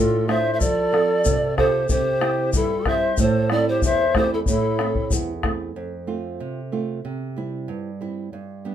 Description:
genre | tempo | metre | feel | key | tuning
andean folk, Andean ensemble | 93 BPM | 2/4 | straight | unclear | A4 = 443 Hz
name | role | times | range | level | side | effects
polished pan flute | melody | 0.0-5.1 s | A4 to E5 | -22 LUFS | equal | none
breathy mellow large quena | second line | 0.0-5.1 s | E4 to C5 | -26 LUFS | left 3 dB | none
nylon-string guitar | accompaniment | 0.0-8.7 s | E2 to A4 | -24 LUFS | right 4 dB | none
bombo | percussion | 0.3-5.6 s | none | -24 LUFS | left 2 dB | none
tube shaker | percussion | 0.6-5.3 s | none | -30 LUFS | left 6 dB | none
room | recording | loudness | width
wet studio ambience, RT60 0.5 s | minimal, uncompressed stereo recording | -19 LUFS | side -10 dB against mid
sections
0.0-5.8 A section; 5.8-8.7 B section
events
none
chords
0.0 Dm; 0.6 F; 1.9 C; 3.2 Am; 5.8 F; 7.0 C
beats
| 0.61 1.25 | 1.89 2.54 | 3.18 3.82 | 4.47 5.11 | 5.76 6.40 | 7.05 7.69 | 8.34

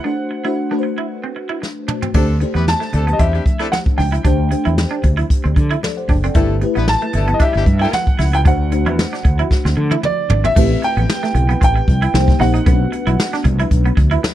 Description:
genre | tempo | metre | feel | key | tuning
polished 1980s jazz-funk pop | 114 BPM | 4/4 | swing 54% on 16ths | unclear | A4 = 440 Hz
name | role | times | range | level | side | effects
clear grand piano | melody | 0.0-13.4 s | D5 to A5 | -22 LUFS | right 1 dB | none
FM electric piano with soft pad layer | accompaniment | 0.0-14.3 s | A3 to G5 | -22 LUFS | left 2 dB | tremolo, lush chorus
clean electric guitar | riff | 0.0-14.3 s | G3 to E4 | -24 LUFS | right 6 dB | analog chorus
jazz brush drum kit | drums | 1.6-14.3 s | crash cymbal, hi-hat, kick drum, snare drum, toms | -16 LUFS | equal | none
warm horn section | second line | 2.1-7.9 s | G3 to B4 | -25 LUFS | left 3 dB | none
fretless electric bass | bass | 2.1-14.2 s | F#1 to D3 | -16 LUFS | equal | lush chorus
congas | percussion | 2.2-14.3 s | none | -29 LUFS | left 3 dB | none
room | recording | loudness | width
small room ambience | dry, close 1970s-style studio recording | -14 LUFS | side -13 dB against mid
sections
0.0-2.1 A section; 2.1-10.6 B section; 10.6-14.3 C section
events
break 0.0-2.1; drum fill 1.6-2.1, 9.5-10.6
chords
0.0 D7; 2.1 D7sus4; 6.4 G69; 8.5 D7; 10.6 Am9; 12.1 Cm7; 12.7 Bm7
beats
| 0.04 0.57 1.10 1.62 | 2.15 2.67 3.20 3.72 | 4.25 4.78 5.30 5.83 | 6.35 6.88 7.40 7.93 | 8.46 8.98 9.51 10.03 | 10.56 11.08 11.61 12.13 | 12.66 13.19 13.71 14.23

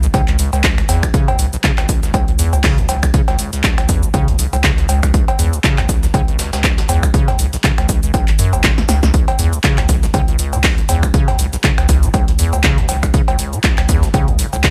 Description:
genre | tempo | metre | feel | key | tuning
acid house | 120 BPM | 4/4 | swing 57% on 16ths | C# minor | A4 = 440 Hz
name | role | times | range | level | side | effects
acid bass, square | riff | 0.0-14.7 s | B1 to C#3 | -21 LUFS | equal | subtle chorus, vintage 12-bit sampler grit, sidechain pumping, digital delay
saturated sub bass | bass | 0.0-14.7 s | G#1 to C#2 | -22 LUFS | equal | none
punchy analog drum machine | drums | 0.0-14.7 s | cowbell, finger snaps, handclaps, hi-hat, shaker, snare drum | -21 LUFS | equal | overdrive
breakbeat sampler-style drum kit | drums | 0.1-14.7 s | hi-hat, snare drum, tambourine | -32 LUFS | equal | none
electronic kick drum | drums | 0.1-14.7 s | none | -18 LUFS | equal | overdrive
room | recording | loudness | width
digital ambience | none | -15 LUFS | mono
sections
0.0-14.7 A section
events
drum fill 8.6-9.1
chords
none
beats
0.14 0.64 | 1.14 1.64 2.14 2.64 | 3.14 3.64 4.14 4.64 | 5.14 5.64 6.14 6.64 | 7.14 7.64 8.14 8.64 | 9.14 9.64 10.14 10.64 | 11.14 11.64 12.14 12.64 | 13.14 13.64 14.14 14.64

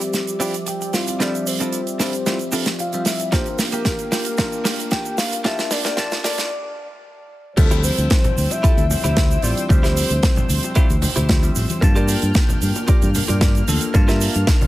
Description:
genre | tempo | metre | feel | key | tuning
nu-disco, nu disco | 113 BPM | 4/4 | straight | D minor | A4 = 440 Hz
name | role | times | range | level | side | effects
soft octave-layered synth lead | melody | 0.0-10.8 s | G4 to G5 | -27 LUFS | left 2 dB | chorus, tremolo, tape echo
bell-like tine electric piano | accompaniment | 0.0-14.7 s | F3 to A5 | -27 LUFS | equal | none
lush unison pad | sustained chords | 0.0-14.7 s | F3 to F6 | -30 LUFS | left 1 dB | chorus, sidechain pumping
modern studio drum kit | drums | 0.0-14.7 s | crash cymbal, hi-hat, shaker, snare drum | -23 LUFS | right 2 dB | none
direct-recorded clean electric guitar | riff | 0.1-14.7 s | Bb3 to E5 | -28 LUFS | right 2 dB | lush chorus, low-pass filter
electronic kick drum | drums | 3.3-14.6 s | none | -17 LUFS | equal | none
fingered electric bass | bass | 7.6-14.4 s | A1 to G2 | -20 LUFS | equal | none
tube shaker, congas and bongos | percussion | 7.6-14.7 s | none | -29 LUFS | left 1 dB | none
room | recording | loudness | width
small room ambience | high-pass filter | -16 LUFS | side -16 dB against mid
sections
0.0-7.6 A section; 7.6-14.7 B section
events
build-up 0.0-7.6; drum fill 0.0-6.5; filter sweep on analog synth pad 0.0-7.6; break 6.5-7.6; drop 7.6-14.7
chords
0.0 Dm11; 3.3 Gm7; 7.6 Dm11; 11.8 Gm7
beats
0.14 0.67 | 1.21 1.74 2.27 2.80 | 3.33 3.86 4.39 4.92 | 5.45 5.98 6.51 7.05 | 7.58 8.11 8.64 9.17 | 9.70 10.23 10.76 11.29 | 11.82 12.36 12.89 13.42 | 13.95 14.48

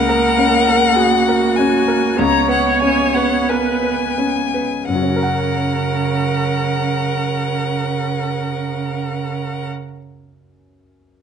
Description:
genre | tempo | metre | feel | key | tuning
classical, slow romantic movement for piano quartet | 41-51 BPM | 4/4 | rubato | F# major | A4 = 440 Hz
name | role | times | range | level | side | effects
rich violin | melody | 0.0-9.7 s | F#5 to A#5 | -20 LUFS | left 7 dB | none
rich cello | second line | 0.0-9.7 s | C#3 to B3 | -21 LUFS | right 7 dB | none
clear grand piano | accompaniment | 0.0-11.2 s | C#2 to F#5 | -21 LUFS | left 3 dB | none
rich viola | accompaniment | 0.0-9.6 s | F#4 to C#5 | -21 LUFS | right 3 dB | none
room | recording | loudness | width
light reverb | nothing above 10.5 kHz | -15 LUFS | side -7 dB against mid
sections
0.0-4.9 A section; 4.9-10.5 B section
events
slowing down 0.0-4.9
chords
0.0 F#/C#; 2.2 C#5; 4.9 F#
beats
0.95 2.18 3.49 | 4.91 6.29 7.71 9.12

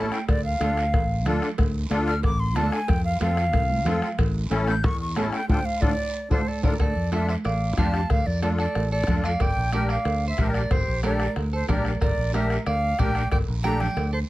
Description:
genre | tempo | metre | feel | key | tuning
latin, cumbia | 184 BPM | 4/4 | straight | D minor | A4 = 437 Hz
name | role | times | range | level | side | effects
silver concert flute | melody | 0.0-14.2 s | C5 to G6 | -28 LUFS | right 1 dB | none
musette accordion | accompaniment | 0.0-13.9 s | C4 to Bb4 | -28 LUFS | left 3 dB | none
fingered electric bass | bass | 0.0-14.2 s | G1 to F2 | -26 LUFS | equal | none
bombo | percussion | 0.1-14.1 s | none | -26 LUFS | left 1 dB | none
guiro | percussion | 0.1-14.3 s | none | -41 LUFS | right 6 dB | none
congas | percussion | 0.3-14.1 s | none | -32 LUFS | right 4 dB | none
cowbell and timbales | percussion | 0.3-14.1 s | none | -36 LUFS | right 5 dB | none
clean electric guitar | second line | 6.3-14.2 s | G4 to G5 | -35 LUFS | right 3 dB | none
room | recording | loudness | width
light reverb | close, detailed microphones | -21 LUFS | side -17 dB against mid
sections
0.0-6.8 A section; 6.8-14.3 B section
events
flute solo 0.0-6.8; drum fill 5.5-6.8; band accent 5.5-6.8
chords
0.3 Dm; 2.9 F; 4.2 A; 5.5 Dm; 9.4 Gm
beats
| 0.28 0.61 0.93 1.26 | 1.58 1.91 2.24 2.56 | 2.89 3.21 3.54 3.87 | 4.19 4.52 4.84 5.17 | 5.49 5.82 6.14 6.47 | 6.80 7.12 7.45 7.78 | 8.10 8.43 8.75 9.08 | 9.41 9.73 10.06 10.38 | 10.71 11.04 11.36 11.69 | 12.02 12.34 12.67 12.99 | 13.32 13.64 13.97

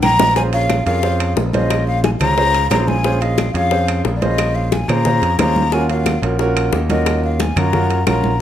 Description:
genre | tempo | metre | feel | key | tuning
Afro-Cuban jazz | 179 BPM | 4/4 | straight | Bb minor | A4 = 438 Hz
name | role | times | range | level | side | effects
breathy mellow silver concert flute | melody | 0.0-8.4 s | D5 to Bb5 | -19 LUFS | left 2 dB | none
picked electric bass | bass | 0.0-8.4 s | Bb1 to Bb2 | -19 LUFS | equal | none
agogo bells and timbales | percussion | 0.0-8.2 s | none | -27 LUFS | right 7 dB | none
claves | percussion | 0.0-8.2 s | none | -30 LUFS | left 1 dB | none
congas | percussion | 0.0-8.4 s | none | -24 LUFS | left 1 dB | none
cowbell and bongos | percussion | 0.0-8.4 s | none | -23 LUFS | left 6 dB | none
clear concert grand piano | accompaniment | 0.4-8.3 s | Db4 to Eb5 | -21 LUFS | right 4 dB | none
room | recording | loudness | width
moderate large studio reverb, RT60 1.1 s | none | -14 LUFS | side -10 dB against mid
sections
0.4-8.4 A section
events
drum fill 0.0-0.4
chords
0.4 Bbm7; 5.7 Ebm7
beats
0.03 | 0.36 0.70 1.03 1.37 | 1.70 2.04 2.37 2.71 | 3.04 3.38 3.71 4.05 | 4.38 4.72 5.05 5.39 | 5.72 6.06 6.40 6.73 | 7.07 7.40 7.74 8.07 | 8.41

